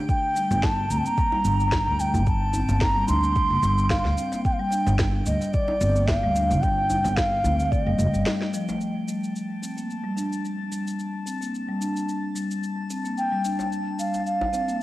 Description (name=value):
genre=organic downtempo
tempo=110 BPM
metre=4/4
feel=swing 55% on 16ths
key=G minor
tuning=A4 = 440 Hz
part: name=drifting glass-harmonics texture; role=texture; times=0.0-14.8 s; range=G5 to A5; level=-38 LUFS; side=left 1 dB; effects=chorus, built-in reverb, cassette tape
part: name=mellow bansuri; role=melody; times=0.1-8.5, 13.2-14.8 s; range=D5 to C6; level=-25 LUFS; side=equal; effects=cassette tape, tape echo
part: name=electronic cabasa and snare drum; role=drums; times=0.1-14.8 s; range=none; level=-33 LUFS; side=equal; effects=small room ambience, cassette tape
part: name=electronic kick drum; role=drums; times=0.1-7.8 s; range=none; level=-25 LUFS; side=equal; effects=small room ambience, cassette tape
part: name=marimba with soft mallets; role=arpeggios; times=0.4-14.8 s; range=F3 to D4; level=-28 LUFS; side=left 1 dB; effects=vintage 12-bit sampler grit, low-pass filter, cassette tape, tape echo
part: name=djembe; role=percussion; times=0.4-8.8, 13.4-14.7 s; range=none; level=-36 LUFS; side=equal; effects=none
part: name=upright bass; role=bass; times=0.5-8.2 s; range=F1 to D2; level=-24 LUFS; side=equal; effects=sidechain pumping
room=moderate lush hall reverb, RT60 2.1 s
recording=home recording on cassette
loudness=-22 LUFS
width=side -16 dB against mid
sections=0.0-8.8 A section; 8.8-14.8 B section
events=break 8.3-8.8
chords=0.1 Gm; 6.6 F7/G; 8.8 Gm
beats=| 0.08 0.63 1.17 1.72 | 2.27 2.81 3.36 3.90 | 4.45 4.99 5.54 6.08 | 6.63 7.17 7.72 8.27 | 8.81 9.36 9.90 10.45 | 10.99 11.54 12.08 12.63 | 13.17 13.72 14.27 14.81